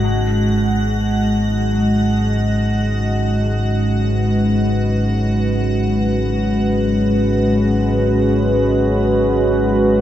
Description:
dark ambient drone; free time; G# minor; A4 = 443 Hz
dark analog pad; sustained chords; 0.0-10.0 s; G#3 to D#5; -17 LUFS; equal; chorus
bright grand piano; arpeggios; 0.0-10.0 s; B2; -37 LUFS; left 4 dB
deep rumbling drone; drone; 0.0-10.0 s; G#1 to G#2; -19 LUFS; equal; built-in reverb
icy glass pad; texture; 0.0-10.0 s; F#4 to F#5; -28 LUFS; left 1 dB; chorus, built-in reverb
wet cathedral reverb, RT60 5.3 s; in a vast, echoing space; -15 LUFS; side -11 dB against mid
0.0-10.0 A section
0.0 G#m

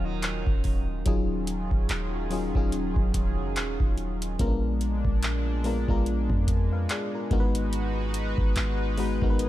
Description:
contemporary R&B; 72 BPM; 4/4; swing 58% on 16ths; Eb minor; A4 = 438 Hz
mellow FM electric piano; accompaniment; 0.0-9.5 s; Gb3 to F5; -31 LUFS; left 4 dB; chorus
chorused pulse-width pad; sustained chords; 0.0-9.5 s; Bb2 to Cb5; -34 LUFS; right 2 dB; sidechain pumping
direct-recorded clean electric guitar; arpeggios; 0.0-1.0 s; Eb4; -42 LUFS; right 9 dB; ping-pong delay
warm 808-style bass; bass; 0.0-9.5 s; Eb1 to F2; -29 LUFS; equal
booming analog drum machine; drums; 0.2-9.5 s; handclaps, hi-hat, kick drum; -27 LUFS; equal
digital ambience; dark, warm production; -24 LUFS; side -14 dB against mid
0.0-1.1 A section; 1.1-9.5 A section
0.0 Ebm9; 1.1 Ebm11; 4.4 Bb7b9; 7.3 Abm7

